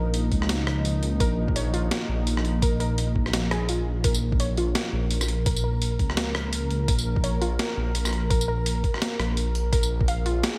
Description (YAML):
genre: half-time drum and bass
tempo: 169 BPM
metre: 4/4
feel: swing 58% on 16ths, half-time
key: Bb minor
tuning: A4 = 440 Hz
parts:
  - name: deep dark ambient pad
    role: sustained chords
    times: 0.0-10.6 s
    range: F3 to Bb4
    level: -35 LUFS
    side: equal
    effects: chorus, built-in reverb, sidechain pumping
  - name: warbly dusty pluck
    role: arpeggios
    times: 0.0-10.6 s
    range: F4 to F5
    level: -35 LUFS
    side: equal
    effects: chorus, dub echo
  - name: dark detuned saw bass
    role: bass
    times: 0.0-10.4 s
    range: Bb1 to Db2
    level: -28 LUFS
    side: equal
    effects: none
  - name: boom bap sampler-style drum kit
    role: drums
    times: 0.1-10.5 s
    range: hi-hat, rim click, snare drum, tambourine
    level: -32 LUFS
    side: equal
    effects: none
  - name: electronic kick drum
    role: drums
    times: 0.3-10.1 s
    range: none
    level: -28 LUFS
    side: equal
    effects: none
room: light reverb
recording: none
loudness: -25 LUFS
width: mono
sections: 0.0-10.6 A section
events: none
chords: 0.0 Bb5